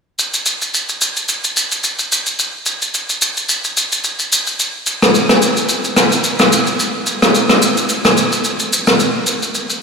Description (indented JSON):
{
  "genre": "amapiano",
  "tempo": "109 BPM",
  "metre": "4/4",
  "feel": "swing 55% on 16ths",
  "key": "none",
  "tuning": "none",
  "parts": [
    { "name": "shaker and rim click", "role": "drums", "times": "0.2-9.8 s", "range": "none", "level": "-13 LUFS", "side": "equal", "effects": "none" }
  ],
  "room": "wet lush hall reverb, RT60 3.0 s",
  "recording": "dreamy mix soaked in reverb",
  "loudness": "-13 LUFS",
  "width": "side -5 dB against mid",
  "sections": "0.2-9.0 A section",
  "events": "none",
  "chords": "none",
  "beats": "| 0.19 0.74 1.29 1.84 | 2.39 2.94 3.49 4.04 | 4.59 5.14 5.69 6.24 | 6.79 7.34 7.89 8.45 | 9.00 9.55"
}